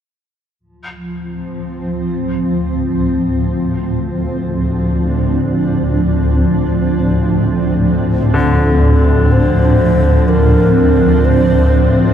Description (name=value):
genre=dark ambient drone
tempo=free time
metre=none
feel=none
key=D minor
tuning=A4 = 438 Hz
part: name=granular cloud pad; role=sustained chords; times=1.0-12.1 s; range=F3 to D4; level=-15 LUFS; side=right 1 dB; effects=built-in reverb
part: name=swarming drone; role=drone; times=1.9-12.1 s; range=D2 to A2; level=-15 LUFS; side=equal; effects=built-in reverb
part: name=bright grand piano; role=arpeggios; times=8.3-12.1 s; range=D3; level=-22 LUFS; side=left 1 dB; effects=diffuse ambient delay
part: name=breathy mellow long shakuhachi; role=melody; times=8.4-12.0 s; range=A4 to C5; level=-17 LUFS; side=equal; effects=diffuse ambient delay
room=wet cathedral reverb, RT60 6.3 s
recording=dark, warm production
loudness=-11 LUFS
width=side -9 dB against mid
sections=0.6-12.1 A section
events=none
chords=0.6 Dm